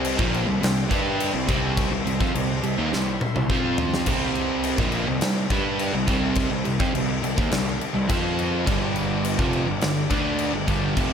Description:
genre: hard rock.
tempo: 104 BPM.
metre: 4/4.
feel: straight.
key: C major.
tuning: A4 = 440 Hz.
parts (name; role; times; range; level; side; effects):
bright tonewheel organ; sustained chords; 0.0-11.1 s; F4 to D6; -36 LUFS; left 1 dB; slow rotary speaker, overdrive.
distorted electric guitar; riff; 0.0-11.1 s; F2 to G4; -31 LUFS; right 1 dB; distortion, slapback echo.
overdriven semi-hollow guitar; riff; 0.0-11.1 s; F2 to G4; -27 LUFS; right 8 dB; none.
sludgy distorted guitar; riff; 0.0-11.1 s; F2 to G4; -29 LUFS; left 9 dB; overdrive.
fuzz picked electric bass; bass; 0.0-11.1 s; F1 to G2; -29 LUFS; equal; overdrive.
huge arena drum kit; drums; 0.0-11.1 s; crash cymbal, kick drum, snare drum, toms; -26 LUFS; left 1 dB; none.
room: moderate lush hall reverb, RT60 2.0 s.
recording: big arena sound.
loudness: -21 LUFS.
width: side -7 dB against mid.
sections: 0.0-11.1 A section.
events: drum fill 2.9-4.1.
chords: 0.0 C; 3.5 F5; 4.1 C; 8.1 F5; 8.7 G5.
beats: 0.04 0.61 1.19 | 1.77 2.34 2.92 3.49 | 4.07 4.64 5.22 5.79 | 6.37 6.95 7.52 8.10 | 8.67 9.25 9.82 10.40 | 10.97.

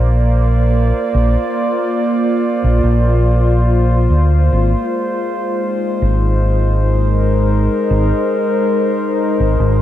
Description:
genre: ambient dub.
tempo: 71 BPM.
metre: 4/4.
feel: swing 54% on 16ths.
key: Bb mixolydian.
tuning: A4 = 440 Hz.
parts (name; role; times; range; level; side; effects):
warbly tape-like pad; sustained chords; 0.0-9.8 s; Ab3 to D5; -16 LUFS; equal; chorus, built-in reverb.
fingered electric bass; bass; 0.0-9.8 s; Ab1 to D2; -13 LUFS; equal; tube saturation.
room: digital ambience.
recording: none.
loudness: -13 LUFS.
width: side -12 dB against mid.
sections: 0.0-9.8 A section.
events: none.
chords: 0.0 Bb; 4.5 Ab.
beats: 0.30 | 1.15 1.99 2.84 3.68 | 4.53 5.37 6.22 7.06 | 7.91 8.75 9.60.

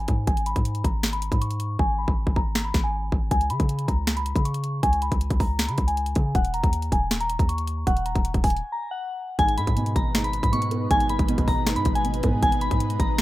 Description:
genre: hip hop, trap.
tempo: 158 BPM.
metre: 4/4.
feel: half-time.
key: G# minor.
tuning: A4 = 441 Hz.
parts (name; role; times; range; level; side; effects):
soft synth bell; melody; 0.0-13.2 s; F#5 to C#6; -27 LUFS; left 1 dB; chorus, low-pass filter, tape echo.
long sustained 808-style bass; bass; 0.0-13.2 s; D#1 to C#3; -27 LUFS; equal; none.
trap drum kit; drums; 0.1-13.2 s; finger snaps, hi-hat, kick drum, snare drum; -24 LUFS; equal; none.
felt-muted upright piano; accompaniment; 9.4-13.2 s; G#2 to B3; -29 LUFS; right 3 dB; low-pass filter.
ethereal airy pad; sustained chords; 9.8-13.2 s; G#3 to B4; -34 LUFS; equal; ensemble chorus, built-in reverb.
room: little or no reverb.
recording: rough home demo mix.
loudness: -21 LUFS.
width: side -16 dB against mid.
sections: 0.0-13.2 A section.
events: filter sweep 0.0-9.4; hi-hats muted 1.8-3.3; break 8.6-9.4.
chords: 0.0 G#m; 3.3 C#5; 6.3 D#m; 9.4 G#m.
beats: | 0.27 0.65 1.03 1.41 | 1.79 2.17 2.55 2.93 | 3.31 3.69 4.07 4.45 | 4.83 5.21 5.59 5.97 | 6.35 6.73 7.11 7.49 | 7.87 8.25 8.63 9.01 | 9.39 9.77 10.15 10.53 | 10.91 11.29 11.67 12.05 | 12.43 12.81 13.19.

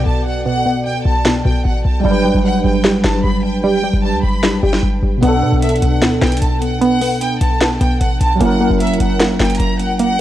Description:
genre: hip hop, trap.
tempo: 151 BPM.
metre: 4/4.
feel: half-time.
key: B minor.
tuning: A4 = 445 Hz.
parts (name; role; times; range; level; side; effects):
rich studio violin section; second line; 0.0-10.2 s; E5 to B5; -21 LUFS; equal; tape echo.
tine electric piano; accompaniment; 0.0-10.2 s; B2 to D5; -18 LUFS; right 1 dB; ensemble chorus.
warbly dusty pluck; arpeggios; 0.0-10.2 s; B2 to B3; -20 LUFS; equal; chorus, tape echo.
short 808-style bass; bass; 0.0-10.2 s; E1 to B2; -18 LUFS; equal; none.
trap drum kit; drums; 1.3-10.1 s; handclaps, hi-hat, snare drum; -20 LUFS; equal; none.
room: light reverb.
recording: dry, gritty hardware recording, transformer saturation, cassette tape.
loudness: -13 LUFS.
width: side -13 dB against mid.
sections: 0.0-10.2 A section.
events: break 0.0-5.2.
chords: 0.0 Bm7; 2.0 Gmaj7; 5.2 Bm7; 8.4 F#7.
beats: 0.06 | 0.46 0.86 1.25 1.65 | 2.05 2.44 2.84 3.24 | 3.64 4.04 4.43 4.83 | 5.23 5.62 6.02 6.42 | 6.82 7.21 7.61 8.01 | 8.40 8.80 9.20 9.60 | 9.99.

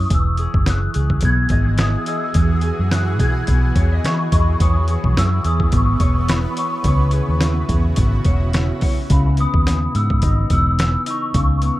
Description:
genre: indie pop, bedroom pop.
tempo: 107 BPM.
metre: 4/4.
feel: swing 55% on 16ths.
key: C# minor.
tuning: A4 = 441 Hz.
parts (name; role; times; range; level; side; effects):
glockenspiel with rubber mallets; melody; 0.0-11.8 s; B5 to G#6; -24 LUFS; left 1 dB; ensemble chorus.
mellow electric guitar; accompaniment; 0.0-11.8 s; C#3 to D#5; -26 LUFS; left 1 dB; lush chorus, vibrato effect.
vintage muted fingered electric bass; bass; 0.0-11.7 s; E1 to E3; -18 LUFS; equal; none.
shimmering ambient pad; sustained chords; 1.2-9.1 s; C#3 to G#4; -29 LUFS; equal; chorus, built-in reverb.
trip hop sampler-style drum kit; drums; 0.1-11.8 s; hi-hat, kick drum, snare drum; -19 LUFS; equal; none.
room: little or no reverb.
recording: rough home demo mix.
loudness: -15 LUFS.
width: side -16 dB against mid.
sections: 0.0-9.1 A section; 9.1-11.8 B section.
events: none.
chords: 0.1 Emaj9; 4.6 C#m7; 6.8 C#m11; 9.1 C#m9.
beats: | 0.10 0.67 1.23 1.79 | 2.35 2.92 3.48 4.04 | 4.60 5.16 5.73 6.29 | 6.85 7.41 7.97 8.54 | 9.10 9.66 10.22 10.78 | 11.34.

